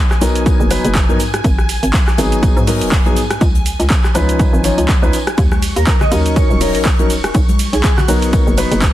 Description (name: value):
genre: deep house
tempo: 122 BPM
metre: 4/4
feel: swing 57% on 16ths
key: unclear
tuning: A4 = 441 Hz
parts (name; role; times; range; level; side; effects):
- string machine, violins; texture; 0.0-8.9 s; Ab5 to Db6; -28 LUFS; equal; ensemble chorus, sidechain pumping
- punchy analog drum machine; drums; 0.1-8.9 s; cabasa, handclaps, hi-hat, ride cymbal, rim click; -21 LUFS; right 1 dB; overdrive
- felt-muted upright piano; stabs; 0.2-8.8 s; F3 to Db5; -18 LUFS; left 2 dB; sidechain pumping, analog delay
- hollow knocking FM bass; bass; 0.2-8.9 s; Eb1 to Ab2; -18 LUFS; equal; sidechain pumping
- deep reggae drum kit; drums; 0.2-8.9 s; hi-hat, snare drum, tambourine; -32 LUFS; left 2 dB; none
- electronic kick drum; drums; 0.5-8.9 s; none; -14 LUFS; equal; overdrive
- congas; percussion; 5.5-8.1 s; none; -24 LUFS; left 2 dB; none
- airy dreamy lead; melody; 5.8-8.2 s; F#4 to Eb5; -22 LUFS; equal; chorus, phaser, analog delay
room: studio reverb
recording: dense, heavily limited modern master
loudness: -11 LUFS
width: side -14 dB against mid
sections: 0.0-8.9 A section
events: none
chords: 0.0 Bmaj7; 1.2 Abm7; 3.4 Db9; 5.4 Ebm7; 7.3 Bmaj7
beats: 0.46 0.95 | 1.44 1.94 2.43 2.92 | 3.41 3.90 4.39 4.89 | 5.38 5.87 6.36 6.85 | 7.35 7.84 8.33 8.82